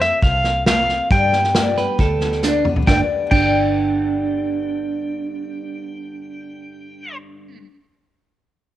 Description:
honky-tonk and classic country; 136 BPM; 4/4; straight; G major; A4 = 440 Hz
pedal steel guitar; melody; 0.0-7.2 s; E5 to G5; -21 LUFS; equal; cassette tape
picked steel-string acoustic guitar; accompaniment; 0.0-7.7 s; G2 to B4; -26 LUFS; left 7 dB; cassette tape
vintage muted fingered electric bass; bass; 0.0-7.6 s; G1 to G2; -24 LUFS; equal
unplugged drum kit; drums; 0.0-3.4 s; crash cymbal, hi-hat, kick drum, snare drum, toms; -20 LUFS; equal; cassette tape
clean electric guitar; second line; 1.8-7.6 s; D4 to B4; -23 LUFS; right 6 dB; cassette tape
light reverb, studio reverb; home recording on cassette; -16 LUFS; side -13 dB against mid
0.0-2.9 A section; 2.9-6.4 B section
drum fill 2.4-2.9
0.0 F; 1.1 G
0.23 0.67 | 1.11 1.55 2.00 2.44 | 2.88 3.32 3.76 4.20 | 4.64 5.08 5.53 5.97

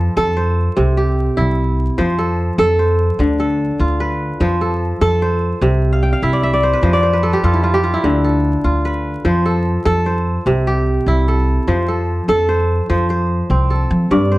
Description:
west african traditional; 99 BPM (dotted quarters); 12/8; straight; F lydian; A4 = 437 Hz
kora; arpeggios; 0.0-14.4 s; G2 to G5; -16 LUFS; equal
upright bass; bass; 0.0-14.4 s; C2 to F3; -17 LUFS; equal
light reverb; vinyl crackle; -14 LUFS; side -18 dB against mid
0.0-12.9 A section; 12.9-14.4 B section
kora fill 5.9-8.0
0.0 F; 0.8 C; 2.0 F; 3.2 Dm; 4.4 F; 5.6 C; 6.8 F; 8.0 Dm; 9.2 F; 10.5 C; 11.7 F
0.16 | 0.77 1.37 1.98 2.58 | 3.19 3.80 4.40 5.01 | 5.61 6.22 6.83 7.43 | 8.04 8.64 9.25 9.86 | 10.46 11.07 11.68 12.28 | 12.89 13.50 14.10

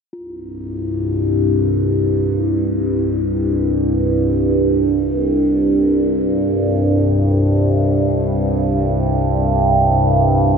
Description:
dark ambient drone; free time; A4 = 440 Hz
bronze singing bowl; texture; 0.1-10.6 s; F4; -39 LUFS; equal
overtone-sweeping drone; drone; 0.5-10.6 s; C2 to G2; -14 LUFS; equal; chorus, built-in reverb, phaser
wet huge ambient reverb, RT60 7.2 s; dreamy mix soaked in reverb; -14 LUFS; side -6 dB against mid
0.1-10.6 A section
0.1 C5
free time

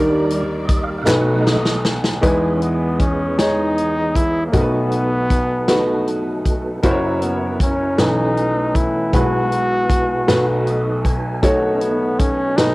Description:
slow gospel; 52 BPM (dotted quarters); 6/8; straight; E major; A4 = 439 Hz
warm upright piano; accompaniment; 0.0-12.7 s; F#1 to C#5; -18 LUFS; equal; cassette tape
tonewheel organ; sustained chords; 0.0-12.7 s; B2 to G#5; -26 LUFS; right 2 dB; slow rotary speaker, chorus vibrato, cassette tape
warm studio string section; sustained chords; 0.0-2.2 s; Eb3 to D5; -29 LUFS; equal; cassette tape
natural country drum kit; drums; 0.3-12.7 s; hi-hat, kick drum, snare drum; -20 LUFS; equal; cassette tape
group handclap; percussion; 1.1-1.4 s; -28 LUFS; right 2 dB
breathy trumpet; melody; 2.5-12.7 s; A#3 to F#4; -20 LUFS; equal; cassette tape
moderate spring reverb, RT60 2.1 s; home recording on cassette; -15 LUFS; side -21 dB against mid
0.0-2.2 A section; 2.2-12.7 B section
tonewheel organ solo 0.0-2.2; drum fill 1.1-2.2; tonewheel organ fill 10.3-11.4
0.0 Ebmaj7; 1.1 B7; 2.2 Emaj7; 4.5 B7; 6.8 F#7; 8.0 B9sus4; 9.1 E/B; 10.3 B7
1.08 | 2.23 3.38 | 4.53 5.68 | 6.83 7.98 | 9.13 10.28 | 11.43 12.58

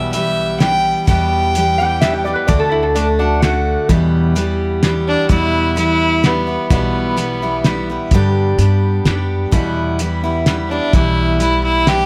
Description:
honky-tonk and classic country; 128 BPM; 3/4; straight; E minor; A4 = 438 Hz
clear fiddle; melody; 0.0-2.2, 5.1-7.8, 10.7-12.1 s; B3 to G5; -19 LUFS; equal
picked steel-string acoustic guitar; accompaniment; 0.0-12.1 s; E2 to G4; -21 LUFS; equal
upright bass; bass; 0.0-12.1 s; B1 to G2; -22 LUFS; equal
cloth-damped thuddy drum kit; drums; 0.1-12.0 s; hi-hat, kick drum, snare drum; -18 LUFS; equal
lap resonator guitar; second line; 1.8-3.9 s; D4 to G5; -22 LUFS; equal
little or no reverb; close, detailed microphones; -16 LUFS; mono
0.0-5.3 A section; 5.3-12.1 A section
0.0 Em; 2.5 D; 3.9 Em; 8.1 G; 9.5 Em
0.14 0.60 | 1.07 1.54 2.01 | 2.48 2.95 3.42 | 3.89 4.36 4.83 | 5.30 5.77 6.24 | 6.71 7.17 7.64 | 8.11 8.58 9.05 | 9.52 9.99 10.46 | 10.93 11.39 11.86

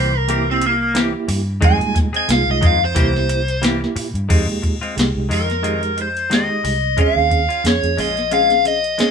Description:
straight-eighth soul blues; 90 BPM; 4/4; swing 56% on 16ths; F minor; A4 = 440 Hz
overdriven electric guitar; melody; 0.0-9.1 s; Bb3 to Ab5; -18 LUFS; left 1 dB; phaser
reed electric piano; accompaniment; 0.0-9.1 s; G3 to Ab4; -24 LUFS; right 5 dB; fast tremolo
semi-hollow electric guitar; stabs; 0.0-9.1 s; Eb3 to Ab4; -26 LUFS; left 3 dB; spring reverb
vintage muted fingered electric bass; bass; 0.0-9.1 s; Bb1 to Bb2; -22 LUFS; equal
soft vintage rhythm box; drums; 0.3-9.1 s; crash cymbal, hi-hat, kick drum, snare drum; -19 LUFS; equal
moderate studio reverb, RT60 0.8 s; band playing live in one room; -15 LUFS; side -6 dB against mid
0.0-4.3 A section; 4.3-9.1 B section
overdriven electric guitar solo 0.0-4.3
0.0 C7; 1.6 Fm7; 3.0 C7; 4.3 Fm7; 7.0 Bbm7
0.28 0.95 | 1.62 2.29 2.96 3.63 | 4.30 4.97 5.64 6.31 | 6.98 7.65 8.32 8.99

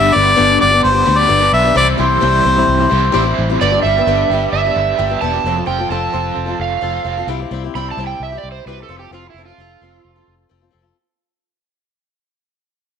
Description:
folk rock and heartland rock; 130 BPM; 4/4; straight; A4 = 440 Hz
clear harmonica; melody; 0.0-3.3 s; C5 to E5; -12 LUFS; left 2 dB
picked swing-style acoustic guitar; accompaniment; 0.0-11.0 s; G2 to A4; -20 LUFS; left 10 dB
overdriven electric guitar; riff; 0.0-7.3 s; F2 to C5; -21 LUFS; right 11 dB; tremolo
fingered electric bass; bass; 0.0-10.9 s; E1 to D2; -20 LUFS; left 1 dB
overdriven slide guitar; second line; 3.6-10.3 s; E4 to B5; -19 LUFS; right 8 dB
moderate echo chamber reverb, RT60 1.5 s, studio ambience; 1960s-style stereo with parts hard left and right; -12 LUFS; side -7 dB against mid
0.0-3.6 A section; 3.6-11.0 B section
fade-out 3.6-11.0; electric slide guitar solo 3.6-11.0
0.0 G; 1.8 C; 3.6 G; 5.4 F; 7.3 C; 8.9 F
0.38 0.84 1.30 | 1.76 2.22 2.68 3.14 | 3.60 4.06 4.52 4.98 | 5.44 5.90 6.36 6.82 | 7.28 7.74 8.20 8.66 | 9.12 9.58 10.04 10.51

